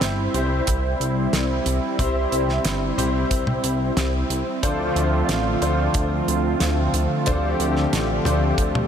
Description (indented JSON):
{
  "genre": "synthwave",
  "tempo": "91 BPM",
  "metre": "4/4",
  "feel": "straight",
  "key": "unclear",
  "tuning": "A4 = 440 Hz",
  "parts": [
    { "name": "brassy analog pad", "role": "sustained chords", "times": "0.0-8.9 s", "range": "D3 to G4", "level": "-24 LUFS", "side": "equal", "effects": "chorus, sidechain pumping" },
    { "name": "clear concert grand piano", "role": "stabs", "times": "0.0-8.9 s", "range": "C4 to C5", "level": "-27 LUFS", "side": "left 2 dB", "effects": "ensemble chorus, analog delay" },
    { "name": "chorused synth bass", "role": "bass", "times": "0.0-8.9 s", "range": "G1 to D2", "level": "-24 LUFS", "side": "equal", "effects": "none" },
    { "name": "damped 70s drum kit", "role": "drums", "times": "0.0-8.9 s", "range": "hi-hat, snare drum, toms", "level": "-28 LUFS", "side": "right 1 dB", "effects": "none" },
    { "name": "kick drum", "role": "drums", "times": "0.7-8.7 s", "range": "none", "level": "-24 LUFS", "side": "equal", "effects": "none" }
  ],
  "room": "moderate huge ambient reverb, RT60 9.3 s",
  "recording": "dreamy mix soaked in reverb",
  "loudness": "-19 LUFS",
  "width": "side -8 dB against mid",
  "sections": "0.0-8.9 A section",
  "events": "none",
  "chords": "0.0 C; 4.6 Dm7"
}